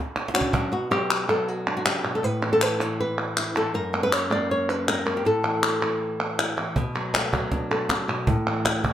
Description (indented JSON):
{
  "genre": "flamenco",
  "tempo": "159 BPM",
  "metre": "4/4",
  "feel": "straight",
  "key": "B minor",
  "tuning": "A4 = 441 Hz",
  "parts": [
    { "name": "cajon", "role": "percussion", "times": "0.2-0.6, 6.8-8.9 s", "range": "none", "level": "-27 LUFS", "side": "right 1 dB", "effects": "none" },
    { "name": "palmas hand claps", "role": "percussion", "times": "0.2-8.9 s", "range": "none", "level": "-26 LUFS", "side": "equal", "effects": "none" },
    { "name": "flamenco guitar", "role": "melody", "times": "0.3-8.9 s", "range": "F#2 to D5", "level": "-24 LUFS", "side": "equal", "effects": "none" }
  ],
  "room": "moderate studio reverb, RT60 0.5 s",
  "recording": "none",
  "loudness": "-22 LUFS",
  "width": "side -10 dB against mid",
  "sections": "0.7-8.9 A section",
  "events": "drum fill 0.2-0.7",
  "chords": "0.0 Dmaj7/F#; 0.7 Bm; 2.2 Asus2; 3.7 F#; 5.3 A5; 6.8 Bm7; 8.3 A5"
}